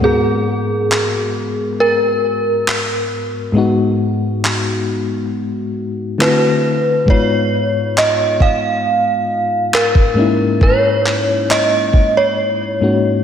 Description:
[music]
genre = contemporary R&B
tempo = 68 BPM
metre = 4/4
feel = straight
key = G# minor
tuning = A4 = 442 Hz
[part]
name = synth chime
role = melody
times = 0.0-13.2 s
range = G#4 to E#5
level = -16 LUFS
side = right 1 dB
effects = ensemble chorus, analog delay
[part]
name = FM electric piano with auto-pan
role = accompaniment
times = 0.0-13.2 s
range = G#2 to A#4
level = -18 LUFS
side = left 2 dB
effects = none
[part]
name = dusty soul sampler-style drum kit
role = drums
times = 0.9-12.1 s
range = handclaps, kick drum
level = -17 LUFS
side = equal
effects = none
[sound]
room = wet plate reverb, RT60 2.5 s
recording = dreamy mix soaked in reverb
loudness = -13 LUFS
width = side -8 dB against mid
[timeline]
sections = 0.0-13.2 A section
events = break 12.4-13.2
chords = 0.0 G#m7; 6.2 D9; 7.1 C#7/G#; 10.2 F#13/G#

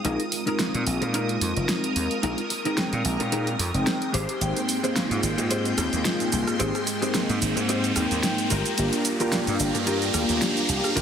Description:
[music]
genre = nu-disco, nu disco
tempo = 110 BPM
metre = 4/4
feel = swing 55% on 16ths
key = F dorian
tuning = A4 = 440 Hz
[part]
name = mellow synth brass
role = accompaniment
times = 0.0-11.0 s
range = Ab3 to G5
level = -27 LUFS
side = equal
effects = chorus, tape echo
[part]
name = string machine, full ensemble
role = sustained chords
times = 0.0-11.0 s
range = Ab3 to Eb6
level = -31 LUFS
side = equal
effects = phaser, ensemble chorus
[part]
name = mellow electric guitar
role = riff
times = 0.0-11.0 s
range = Eb4 to C5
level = -31 LUFS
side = left 1 dB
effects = ensemble chorus, low-pass filter, tape echo
[part]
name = gritty slap bass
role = bass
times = 0.0-11.0 s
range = F1 to Bb2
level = -28 LUFS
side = equal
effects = overdrive
[part]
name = pop drum kit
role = drums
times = 0.0-11.0 s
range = hi-hat, rim click, shaker, snare drum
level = -28 LUFS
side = right 1 dB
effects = overdrive
[part]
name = riser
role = sound effects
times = 0.0-11.0 s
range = none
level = -33 LUFS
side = right 1 dB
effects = none
[sound]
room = moderate plate reverb, RT60 1.6 s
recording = dense, heavily limited modern master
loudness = -22 LUFS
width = side -8 dB against mid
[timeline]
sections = 0.0-11.0 A section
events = build-up 0.0-11.0; riser 0.0-11.0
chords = 0.0 Fm7; 4.1 Abmaj7; 8.5 Gm7

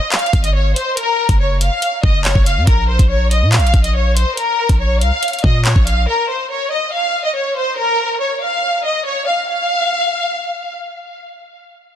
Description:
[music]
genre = hip hop, drill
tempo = 141 BPM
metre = 4/4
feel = half-time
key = Bb minor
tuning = A4 = 440 Hz
[part]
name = rich studio violin section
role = melody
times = 0.0-10.7 s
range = Bb4 to F5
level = -17 LUFS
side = left 1 dB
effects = low-pass filter, tape echo
[part]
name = drill drum kit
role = drums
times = 0.1-6.0 s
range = handclaps, hi-hat, kick drum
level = -15 LUFS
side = equal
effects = none
[part]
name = long sustained 808-style bass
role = bass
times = 0.3-6.1 s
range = Gb1 to Bb2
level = -15 LUFS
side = equal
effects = none
[sound]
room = little or no reverb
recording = dense, heavily limited modern master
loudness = -13 LUFS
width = side -10 dB against mid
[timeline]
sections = 0.0-2.7 A section; 2.7-9.5 B section; 9.5-12.0 C section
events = none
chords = 0.0 Gbmaj7sus2 (rootless); 1.0 Gb; 2.7 Bb5; 6.1 N.C.

